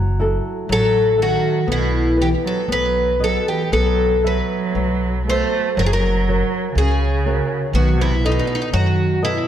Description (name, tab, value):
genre	fado-style ballad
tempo	60 BPM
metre	2/4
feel	uneven beats, rubato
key	unclear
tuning	A4 = 440 Hz
part	flamenco guitar	accompaniment	0.0-9.5 s	C#3 to E5	-24 LUFS	left 1 dB	none
part	upright bass	bass	0.0-9.4 s	F#1 to F#2	-20 LUFS	equal	none
part	picked twelve-string acoustic guitar	melody	0.7-9.5 s	D#4 to C5	-20 LUFS	left 1 dB	slapback echo
part	warm cello	second line	0.7-9.5 s	B2 to A3	-23 LUFS	right 5 dB	none
room	moderate concert hall reverb, RT60 1.9 s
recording	none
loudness	-16 LUFS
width	side -10 dB against mid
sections	0.0-9.5 A section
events	none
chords	0.0 F#m7; 1.7 Em/B; 2.7 B; 3.7 B7sus4; 5.8 F#; 7.7 B7